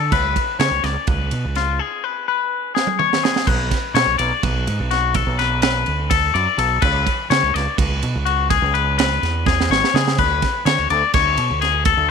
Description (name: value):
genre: math rock and midwest emo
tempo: 251 BPM (eighths)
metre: 7/8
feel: straight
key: unclear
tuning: A4 = 440 Hz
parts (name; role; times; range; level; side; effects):
- twangy electric guitar; arpeggios; 0.0-12.1 s; E#4 to D5; -19 LUFS; left 12 dB; none
- growling fingered electric bass; bass; 0.0-12.1 s; G#1 to D3; -22 LUFS; right 2 dB; overdrive
- crisp fusion drum kit; drums; 0.1-12.0 s; crash cymbal, kick drum, ride cymbal, snare drum, toms; -22 LUFS; right 5 dB; none
room: light reverb, studio reverb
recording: 1960s-style stereo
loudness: -16 LUFS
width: side -6 dB against mid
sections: 0.0-3.5 A section; 3.5-12.1 B section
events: drum fill 2.8-3.5, 9.5-10.2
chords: 0.1 C#7(no3); 3.5 Bm7; 6.8 C#m7; 10.2 Dmaj7(no3)